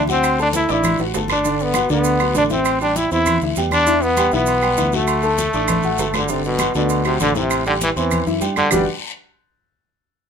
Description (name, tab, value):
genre	latin, salsa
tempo	198 BPM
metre	4/4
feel	straight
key	G major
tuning	A4 = 440 Hz
part	brilliant trombone	melody	0.0-8.9 s	B2 to E4	-19 LUFS	equal	none
part	dark upright piano	accompaniment	0.0-8.9 s	D3 to D6	-22 LUFS	equal	none
part	fingered electric bass	bass	0.0-8.9 s	G1 to G2	-24 LUFS	left 1 dB	none
part	congas	percussion	0.1-8.8 s	none	-28 LUFS	left 2 dB	none
part	guiro	percussion	0.1-8.8 s	none	-30 LUFS	left 7 dB	none
part	maracas	percussion	0.1-8.8 s	none	-31 LUFS	right 7 dB	none
part	agogo bells and timbales	percussion	0.2-8.8 s	none	-26 LUFS	right 4 dB	none
part	claves	percussion	0.2-8.8 s	none	-28 LUFS	right 4 dB	none
room	moderate studio reverb, RT60 0.6 s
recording	minimal, uncompressed stereo recording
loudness	-16 LUFS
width	side -7 dB against mid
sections	0.0-6.3 A section; 6.3-8.7 B section; 8.7-9.9 C section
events	drum fill 0.5-1.5, 5.7-6.3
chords	0.2 D; 1.5 Gmaj7; 2.7 Am7; 3.9 Em7; 5.1 D; 6.3 Gmaj7; 7.5 Am7; 8.7 Gmaj7